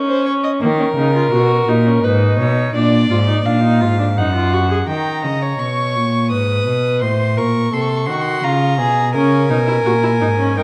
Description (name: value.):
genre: classical, baroque-style fugue for string quartet.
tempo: 84 BPM.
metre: 3/4.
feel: straight.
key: Eb minor.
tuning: A4 = 440 Hz.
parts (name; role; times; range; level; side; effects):
rich viola; accompaniment; 0.0-4.8, 9.1-10.6 s; Bb3 to Ab4; -22 LUFS; equal; none.
rich violin; second line; 0.1-10.6 s; F4 to G5; -22 LUFS; equal; none.
rich cello; bass; 0.6-10.6 s; Gb2 to Eb3; -19 LUFS; equal; none.
rich violin; melody; 4.9-10.6 s; G5 to Eb6; -26 LUFS; equal; none.
room: wet recital hall reverb, RT60 1.5 s.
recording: dark, warm production.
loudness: -16 LUFS.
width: mono.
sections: 0.0-4.9 A section; 4.9-10.6 B section.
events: none.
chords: 0.0 N.C.; 0.6 Ebm; 2.0 Abm; 2.7 Bb7; 4.2 Ebm/Gb; 4.9 Eb7; 6.3 Abm; 7.0 Adim7; 8.4 Bbm/Db; 9.1 A#m.